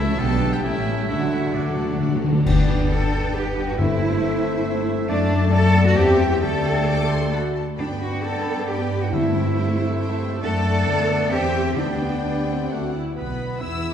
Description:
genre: classical, dramatic, fast romantic movement for symphony orchestra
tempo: 135 BPM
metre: 3/4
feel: rubato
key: G major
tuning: A4 = 442 Hz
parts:
  - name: warm symphonic violin section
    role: melody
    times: 0.0-13.9 s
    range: D5 to E6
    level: -37 LUFS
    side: left 4 dB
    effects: none
  - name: clear clarinet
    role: second line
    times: 0.0-13.9 s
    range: C#4 to E5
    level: -31 LUFS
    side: left 2 dB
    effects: none
  - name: clear oboe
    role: second line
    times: 0.0-13.9 s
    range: D4 to A5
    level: -33 LUFS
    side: equal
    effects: none
  - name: rich studio violin section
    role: second line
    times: 0.0-13.9 s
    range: B3 to E5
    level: -37 LUFS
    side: left 2 dB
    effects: none
  - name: silver concert flute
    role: second line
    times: 0.0-13.9 s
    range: B4 to A5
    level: -33 LUFS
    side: left 3 dB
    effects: none
  - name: rich symphonic viola section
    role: accompaniment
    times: 0.0-13.9 s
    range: D3 to E4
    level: -30 LUFS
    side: equal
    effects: none
  - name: warm bassoon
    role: accompaniment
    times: 0.0-13.9 s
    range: A3 to E4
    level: -33 LUFS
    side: right 1 dB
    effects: none
  - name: warm French horn section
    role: sustained chords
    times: 0.0-13.9 s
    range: A3 to B4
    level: -31 LUFS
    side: left 2 dB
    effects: none
  - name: rich studio double bass section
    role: bass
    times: 0.0-13.9 s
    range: A1 to G2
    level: -24 LUFS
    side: equal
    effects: none
  - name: warm symphonic cello section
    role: bass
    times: 0.0-13.9 s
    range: C#2 to A4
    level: -25 LUFS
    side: right 1 dB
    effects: none
  - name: timpani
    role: percussion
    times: 1.1-4.4, 9.1-9.7, 11.8-12.4 s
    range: G2 to D3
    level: -25 LUFS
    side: left 2 dB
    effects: none
  - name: clash cymbals and concert bass drum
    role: percussion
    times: 2.5-3.3 s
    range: none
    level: -25 LUFS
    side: left 1 dB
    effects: none
room: wet scoring stage reverb, RT60 1.9 s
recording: heard from further back in the room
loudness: -19 LUFS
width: side -9 dB against mid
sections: 0.0-2.5 A section; 2.5-13.2 B section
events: timpani fill 1.1-2.5; band accent 2.5-2.9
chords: 0.2 G/B; 0.6 A7; 1.1 D; 2.5 G; 3.8 Am7/G; 5.1 D/F#; 6.0 C/E; 6.4 Dsus4; 7.3 D; 7.8 G; 9.1 Am7/G; 10.4 D/F#; 11.3 C/E; 11.8 G/D; 12.7 D; 13.2 Bsus4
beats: 0.20 0.64 | 1.08 1.54 2.00 | 2.46 2.91 3.35 | 3.79 4.23 4.66 | 5.09 5.53 5.97 | 6.42 6.88 7.33 | 7.79 8.23 8.68 | 9.12 9.57 10.00 | 10.43 10.87 11.31 | 11.77 12.24 12.71 | 13.17 13.61

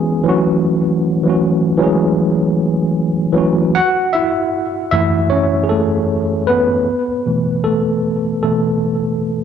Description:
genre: hip hop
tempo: 77 BPM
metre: 4/4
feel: swing 61% on 16ths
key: F# minor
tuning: A4 = 440 Hz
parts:
  - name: tine electric piano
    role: solo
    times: 0.0-9.4 s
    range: F#2 to F#5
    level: -14 LUFS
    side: equal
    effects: overdrive, fast stereo tremolo, cassette tape
room: moderate spring reverb, RT60 2.0 s, digital ambience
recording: dark, warm production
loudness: -14 LUFS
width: side -8 dB against mid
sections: 0.0-3.8 A section; 3.8-9.4 B section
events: tine electric piano solo 3.8-9.4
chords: 0.3 F#m7; 6.9 B7sus4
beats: | 0.64 1.42 2.20 2.98 | 3.76 4.54 5.32 6.09 | 6.87 7.65 8.43 9.21

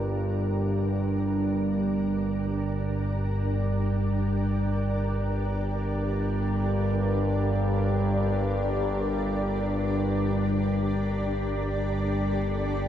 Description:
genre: dark ambient drone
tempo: free time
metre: none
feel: none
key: G minor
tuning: A4 = 441 Hz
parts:
  - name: granular cloud pad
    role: sustained chords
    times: 0.0-12.9 s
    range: D4 to D5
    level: -32 LUFS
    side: equal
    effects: built-in reverb, shimmer reverb
  - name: analog drone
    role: drone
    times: 0.0-12.9 s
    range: G1 to G2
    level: -25 LUFS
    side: equal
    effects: chorus
room: wet huge ambient reverb, RT60 8.2 s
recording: none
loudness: -24 LUFS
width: side -10 dB against mid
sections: 0.0-12.9 A section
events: fade-in on ambient pad 0.0-12.9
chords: 0.0 Gm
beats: free time

